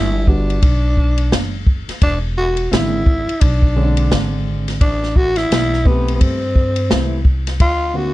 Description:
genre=hip hop, jazz-hop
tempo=86 BPM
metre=4/4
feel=swing 59% on 16ths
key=unclear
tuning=A4 = 440 Hz
part: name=growling tenor saxophone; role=melody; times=0.0-8.1 s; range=B3 to F#4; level=-20 LUFS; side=equal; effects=slapback echo
part: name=upright bass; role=bass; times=0.0-8.1 s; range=E1 to G2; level=-19 LUFS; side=equal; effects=none
part: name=dark grand piano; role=accompaniment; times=0.3-8.1 s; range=C3 to G4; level=-22 LUFS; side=equal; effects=none
part: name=open jazz drum kit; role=drums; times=0.3-7.8 s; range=hi-hat, kick drum, ride cymbal, snare drum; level=-16 LUFS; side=equal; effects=none
room=little or no reverb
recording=none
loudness=-14 LUFS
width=side -17 dB against mid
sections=0.0-8.1 A section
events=none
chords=0.0 Em7 (rootless); 2.0 E7b13; 4.8 Am9; 7.6 D7alt

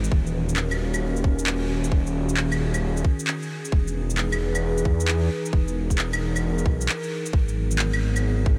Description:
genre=future garage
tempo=133 BPM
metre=4/4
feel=swing 66% on 16ths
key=G# minor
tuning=A4 = 440 Hz
part: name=warbly tape-like pad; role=sustained chords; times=0.0-8.6 s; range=D#3 to B4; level=-31 LUFS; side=equal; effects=chorus, built-in reverb, vintage 12-bit sampler grit, sidechain pumping
part: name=swelling detuned saw bass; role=bass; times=0.0-8.6 s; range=D#1 to E2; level=-27 LUFS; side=equal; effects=none
part: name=electronic shaker, handclaps and claves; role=drums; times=0.0-8.2 s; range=none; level=-32 LUFS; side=equal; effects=overdrive
part: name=electronic kick drum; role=drums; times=0.1-8.6 s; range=none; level=-23 LUFS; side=equal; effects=overdrive
room=moderate huge ambient reverb, RT60 4.5 s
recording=dreamy mix soaked in reverb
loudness=-24 LUFS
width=mono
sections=0.0-7.3 A section; 7.3-8.6 A section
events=break 6.9-7.3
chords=0.1 D#m7; 3.7 Emaj7; 7.3 G#m9

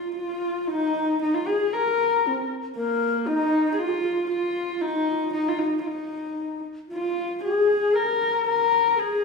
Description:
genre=mongolian traditional, Mongolian folk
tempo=116 BPM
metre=4/4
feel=straight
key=F yu mode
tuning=A4 = 440 Hz
part: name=dark horsehead fiddle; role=melody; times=0.0-9.2 s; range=Bb3 to Bb4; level=-23 LUFS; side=left 2 dB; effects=none
part: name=mellow low xiao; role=second line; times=0.0-9.2 s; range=C4 to Bb4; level=-27 LUFS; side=left 2 dB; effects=none
room=wet recital hall reverb, RT60 1.4 s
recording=recorded in a church or concert hall, small room ambience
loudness=-22 LUFS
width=side -4 dB against mid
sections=0.0-9.2 A section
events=none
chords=none

